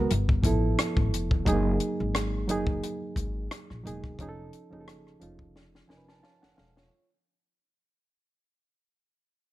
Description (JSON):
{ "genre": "R&B, neo-soul", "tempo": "88 BPM", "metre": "4/4", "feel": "swing 56% on 16ths", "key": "unclear", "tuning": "A4 = 439 Hz", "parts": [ { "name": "reed electric piano", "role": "accompaniment", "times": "0.0-7.1 s", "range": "F3 to A5", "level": "-30 LUFS", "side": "right 2 dB", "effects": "none" }, { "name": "upright bass", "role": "bass", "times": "0.0-6.9 s", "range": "E1 to A#1", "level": "-30 LUFS", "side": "left 1 dB", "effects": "none" }, { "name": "compact cocktail drum kit", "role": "drums", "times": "0.1-6.9 s", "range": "hi-hat, kick drum, rim click, snare drum", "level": "-28 LUFS", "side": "left 1 dB", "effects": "none" } ], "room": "light reverb, studio reverb", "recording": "none", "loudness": "-25 LUFS", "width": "side -15 dB against mid", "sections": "0.0-6.9 A section", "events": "fade-out 0.0-6.9; drum fill 5.6-6.9; reed electric piano fill 5.6-6.9", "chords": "0.1 G13; 1.5 F#69; 4.2 F7alt" }